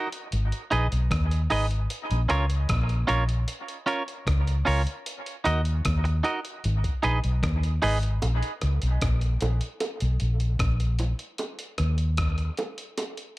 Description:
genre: dub reggae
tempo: 76 BPM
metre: 4/4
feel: straight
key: unclear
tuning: A4 = 442 Hz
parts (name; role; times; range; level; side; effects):
- clean electric guitar; accompaniment; 0.0-8.0 s; Db4 to Eb5; -29 LUFS; right 2 dB; dub echo
- dusty soul sampler-style drum kit; drums; 0.1-13.4 s; hi-hat, kick drum, rim click; -32 LUFS; equal; none
- vintage muted fingered electric bass; bass; 0.3-12.5 s; Ab1 to Eb2; -24 LUFS; equal; none
- bongos; percussion; 8.2-13.2 s; none; -34 LUFS; right 2 dB; dub echo
room: little or no reverb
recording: none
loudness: -24 LUFS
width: side -19 dB against mid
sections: 0.0-8.2 A section; 8.2-13.4 B section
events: break 0.0-8.2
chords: 0.3 Abm; 1.9 Bbm; 5.1 Ebm; 6.6 Abm; 8.2 N.C.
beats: 0.32 1.11 | 1.90 2.69 3.48 4.27 | 5.06 5.85 6.64 7.43 | 8.22 9.01 9.80 10.60 | 11.39 12.18 12.97

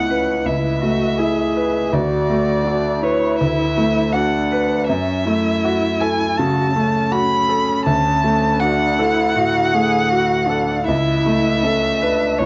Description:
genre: neoclassical piano and strings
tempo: 80 BPM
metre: 4/4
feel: rubato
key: unclear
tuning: A4 = 440 Hz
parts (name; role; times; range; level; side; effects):
- muted violin; melody; 0.0-12.5 s; C#5 to B5; -22 LUFS; equal; none
- muted cello; second line; 0.0-12.5 s; C#4 to G#4; -26 LUFS; equal; none
- bright concert grand piano; accompaniment; 0.0-12.5 s; C#2 to B4; -21 LUFS; equal; none
room: light reverb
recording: dark, warm production, nothing above 7.6 kHz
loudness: -18 LUFS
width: mono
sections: 0.0-12.5 A section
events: none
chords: 0.0 Aadd9/C#; 1.9 Bm7/D; 4.9 F#m7; 7.9 D; 10.9 Aadd9/C#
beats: 0.46 1.20 | 1.94 2.66 3.40 4.14 | 4.88 5.63 6.38 7.12 | 7.86 8.61 9.37 10.12 | 10.88 11.63 12.40

